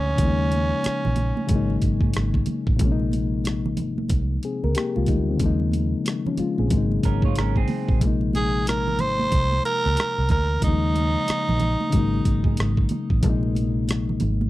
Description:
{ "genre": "R&B, neo-soul", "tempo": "92 BPM", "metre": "4/4", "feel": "swing 61% on 16ths", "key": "Bb minor", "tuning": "A4 = 440 Hz", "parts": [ { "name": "growling tenor saxophone", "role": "melody", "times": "0.0-1.8, 8.4-12.5 s", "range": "Db4 to C5", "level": "-25 LUFS", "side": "right 2 dB", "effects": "none" }, { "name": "reed electric piano", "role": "accompaniment", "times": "0.0-14.5 s", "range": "Bb2 to Bb4", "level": "-25 LUFS", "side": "left 4 dB", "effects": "none" }, { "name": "vintage muted fingered electric bass", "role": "bass", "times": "0.0-14.5 s", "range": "Ab1 to Ab2", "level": "-24 LUFS", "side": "right 1 dB", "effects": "none" }, { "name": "dusty soul sampler-style drum kit", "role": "drums", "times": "0.2-14.4 s", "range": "hi-hat, kick drum, rim click", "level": "-23 LUFS", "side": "right 1 dB", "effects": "none" }, { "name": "congas", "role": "percussion", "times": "0.4-14.5 s", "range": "none", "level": "-31 LUFS", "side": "right 5 dB", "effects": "none" }, { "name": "electric guitar through a small old amp", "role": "second line", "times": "7.1-8.0 s", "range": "C4 to Db5", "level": "-30 LUFS", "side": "right 10 dB", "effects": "none" } ], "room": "little or no reverb", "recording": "dry, close 1970s-style studio recording", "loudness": "-20 LUFS", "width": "side -16 dB against mid", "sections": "0.0-14.5 A section", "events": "none", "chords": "0.2 Eb9sus4; 1.5 Ab9sus4; 2.8 Bb9sus4; 5.4 Eb9sus4; 6.7 Ab9sus4; 8.0 Bb9sus4; 10.6 Eb9sus4; 11.9 Ab9sus4; 13.2 Bb9sus4", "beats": "| 0.19 0.84 1.49 2.14 | 2.79 3.45 4.10 4.75 | 5.40 6.06 6.71 7.36 | 8.01 8.66 9.32 9.97 | 10.62 11.27 11.93 12.58 | 13.23 13.88" }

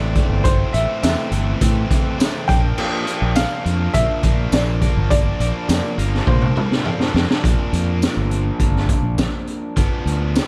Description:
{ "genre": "indie rock", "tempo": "103 BPM", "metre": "4/4", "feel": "straight", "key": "unclear", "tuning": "A4 = 439 Hz", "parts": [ { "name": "clear upright piano", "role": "melody", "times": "0.0-7.1 s", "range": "C5 to G5", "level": "-28 LUFS", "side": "equal", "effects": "analog delay" }, { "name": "overdriven electric guitar", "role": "riff", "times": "0.0-10.5 s", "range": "E3 to D4", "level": "-27 LUFS", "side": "equal", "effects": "none" }, { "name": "fingered electric bass", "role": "bass", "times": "0.0-10.4 s", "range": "G1 to Bb2", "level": "-22 LUFS", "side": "equal", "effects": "none" }, { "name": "raw garage drum kit", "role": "drums", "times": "0.2-10.5 s", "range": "crash cymbal, hi-hat, kick drum, snare drum, tambourine, toms", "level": "-22 LUFS", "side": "equal", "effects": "none" } ], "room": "little or no reverb", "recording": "dark, warm production", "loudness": "-19 LUFS", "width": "mono", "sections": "0.0-7.4 A section; 7.4-10.5 B section", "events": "drum fill 6.3-7.4", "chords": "0.0 Am; 2.5 Bb; 9.8 G7", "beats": "| 0.45 1.03 1.61 2.19 | 2.78 3.36 3.94 4.52 | 5.10 5.68 6.27 6.85 | 7.43 8.01 8.60 9.18 | 9.76 10.35" }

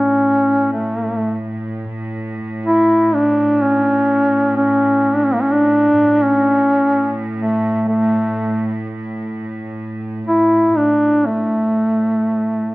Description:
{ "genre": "caucasian folk, Caucasian lament", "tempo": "63 BPM", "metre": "4/4", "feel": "rubato", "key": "A major", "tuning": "A4 = 442 Hz", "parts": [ { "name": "mellow duduk", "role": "melody", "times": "0.0-12.7 s", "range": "A3 to E4", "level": "-14 LUFS", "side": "equal", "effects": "none" }, { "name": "rich chamber string section", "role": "drone", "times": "0.0-12.7 s", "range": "A2", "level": "-25 LUFS", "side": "right 1 dB", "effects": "none" } ], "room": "moderate recital hall reverb, RT60 1.6 s", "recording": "worn, warbling old tape, cassette tape, warbly pitch drift", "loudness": "-14 LUFS", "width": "side -21 dB against mid", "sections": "0.0-12.7 A section", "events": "none", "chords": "none", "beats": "0.73 | 1.68 2.63 3.60 4.56 | 5.51 6.45 7.40 8.34 | 9.28 10.26 11.25 12.29" }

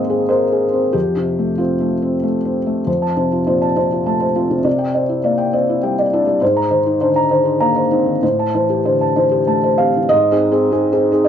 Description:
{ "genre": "neoclassical minimalist piano", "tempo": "90-104 BPM", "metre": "3/4", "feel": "rubato", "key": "F major", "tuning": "A4 = 440 Hz", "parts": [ { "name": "felt-muted upright piano", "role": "solo", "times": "0.0-11.3 s", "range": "F2 to Bb5", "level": "-14 LUFS", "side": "equal", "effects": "none" } ], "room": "wet small room reverb, RT60 0.5 s", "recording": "heard from further back in the room", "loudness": "-14 LUFS", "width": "side -9 dB against mid", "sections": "0.0-2.9 A section; 2.9-10.1 B section; 10.1-11.3 C section", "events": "none", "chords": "0.0 Abadd9; 0.9 F; 4.7 Cadd9; 6.4 Abadd9; 8.2 Am7; 10.1 Ab", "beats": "0.30 | 0.94 1.60 2.24 | 2.87 3.47 4.07 | 4.66 5.24 5.83 | 6.41 7.01 7.61 | 8.22 8.85 9.48 | 10.11 10.71" }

